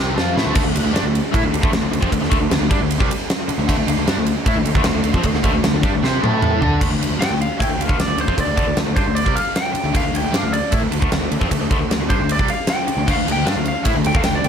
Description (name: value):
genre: hard rock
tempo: 154 BPM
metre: 4/4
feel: straight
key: D minor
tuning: A4 = 440 Hz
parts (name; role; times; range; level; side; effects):
- overdriven electric guitar; riff; 0.0-14.5 s; C3 to D5; -24 LUFS; left 12 dB; phaser
- tight distorted guitar; riff; 0.0-14.5 s; C3 to D5; -26 LUFS; right 11 dB; distortion
- growling fingered electric bass; bass; 0.0-14.5 s; C2 to D3; -24 LUFS; equal; overdrive
- huge arena drum kit; drums; 0.2-14.5 s; crash cymbal, kick drum, ride cymbal, snare drum, toms; -20 LUFS; equal; none
- overdriven semi-hollow guitar; riff; 0.5-6.8, 13.1-14.5 s; C3 to D5; -24 LUFS; equal; none
- lightly driven lead guitar; melody; 7.2-14.5 s; C5 to G5; -23 LUFS; equal; tape echo
room: light reverb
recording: none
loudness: -16 LUFS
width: side -8 dB against mid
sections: 0.6-6.8 A section; 6.8-14.5 B section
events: drum fill 0.0-0.6, 6.0-6.8; lead electric guitar solo 6.8-14.5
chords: 0.0 Dm; 6.2 A5; 6.6 D5; 6.8 Dm